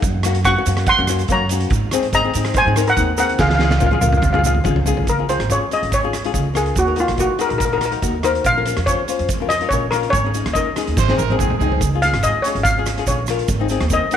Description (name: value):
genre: calypso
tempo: 143 BPM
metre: 4/4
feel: swing 53% on 16ths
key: Db major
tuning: A4 = 442 Hz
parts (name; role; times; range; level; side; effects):
- flamenco guitar; accompaniment; 0.0-14.2 s; Bb3 to C5; -23 LUFS; left 9 dB; none
- upright bass; bass; 0.0-14.0 s; Ab1 to Ab2; -21 LUFS; right 2 dB; none
- oversized low-tuned drum kit; drums; 0.0-14.2 s; hi-hat, kick drum, rim click, snare drum, toms; -22 LUFS; right 1 dB; none
- tube shaker; percussion; 0.0-14.2 s; none; -31 LUFS; right 15 dB; none
- steel pan; melody; 0.5-14.2 s; F4 to Db6; -19 LUFS; equal; none
- bright trumpet; second line; 11.0-11.9 s; Ab4 to C5; -24 LUFS; right 12 dB; none
room: light reverb, small room ambience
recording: 1960s-style stereo with parts hard left and right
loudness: -15 LUFS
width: side -9 dB against mid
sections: 0.0-5.1 A section; 5.1-14.2 B section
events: drum fill 3.4-5.1, 11.0-11.8; steel pan solo 5.1-14.2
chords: 0.0 Gb; 1.7 Ab; 3.4 Db; 6.8 Ebm; 8.5 Bbm; 10.1 Absus4; 11.0 Abadd9; 11.8 Db; 13.5 Ab